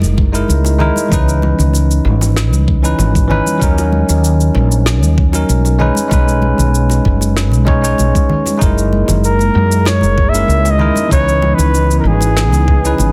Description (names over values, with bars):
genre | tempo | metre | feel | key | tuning
sunset chillout | 96 BPM | 4/4 | straight | C# dorian | A4 = 440 Hz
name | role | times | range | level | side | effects
bell-like tine electric piano | accompaniment | 0.0-13.1 s | E3 to C#5 | -19 LUFS | equal | digital delay
woody fretless electric bass | bass | 0.0-13.1 s | F#1 to F#2 | -15 LUFS | equal | lush chorus
electronic cabasa and snare drum | drums | 0.0-13.1 s | none | -23 LUFS | equal | studio reverb
congas and bongos | percussion | 0.0-13.1 s | none | -26 LUFS | equal | none
electronic kick drum | drums | 0.2-12.8 s | none | -16 LUFS | equal | studio reverb
lush unison pad | sustained chords | 8.6-13.1 s | C#3 to D#4 | -23 LUFS | equal | chorus
warm flugelhorn | melody | 9.2-13.1 s | G#4 to E5 | -19 LUFS | equal | digital delay
room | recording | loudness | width
light reverb | dense, heavily limited modern master | -13 LUFS | mono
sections
0.0-13.1 A section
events
none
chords
0.0 F#13; 1.1 C#m9; 3.6 D#m7; 5.8 B69; 8.6 F#13; 11.1 C#m9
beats
0.49 | 1.11 1.74 2.37 2.99 | 3.62 4.24 4.87 5.49 | 6.12 6.74 7.37 7.99 | 8.62 9.24 9.87 10.49 | 11.12 11.74 12.37 12.99